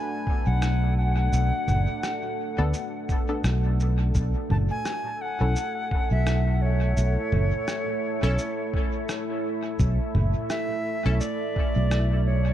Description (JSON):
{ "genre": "ambient dub", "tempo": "85 BPM", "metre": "4/4", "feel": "swing 57% on 16ths", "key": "unclear", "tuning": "A4 = 441 Hz", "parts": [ { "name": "bright reedy wooden flute", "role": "melody", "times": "0.0-12.5 s", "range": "C#5 to A5", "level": "-31 LUFS", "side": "left 1 dB", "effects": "dub echo" }, { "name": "deep dark ambient pad", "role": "sustained chords", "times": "0.0-12.5 s", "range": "A3 to F#5", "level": "-31 LUFS", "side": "right 1 dB", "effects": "chorus, built-in reverb" }, { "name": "electronic kick drum", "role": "drums", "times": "0.3-11.7 s", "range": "none", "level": "-27 LUFS", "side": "equal", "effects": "small room ambience" }, { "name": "fingered electric bass", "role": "bass", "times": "0.5-12.5 s", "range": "F#1 to D2", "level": "-22 LUFS", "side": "equal", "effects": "tube saturation" }, { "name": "electronic rim click, cabasa and congas", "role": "drums", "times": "0.6-12.1 s", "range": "none", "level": "-34 LUFS", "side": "right 1 dB", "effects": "small room ambience, dub echo" }, { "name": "filtered dub chord stab", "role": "stabs", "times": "2.6-11.2 s", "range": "B3 to A4", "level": "-36 LUFS", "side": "left 1 dB", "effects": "chorus, dub echo" } ], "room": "light reverb", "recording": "echo-heavy mix", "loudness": "-23 LUFS", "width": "side -11 dB against mid", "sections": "0.0-12.5 A section", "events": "none", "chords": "0.0 Bm7; 4.1 A" }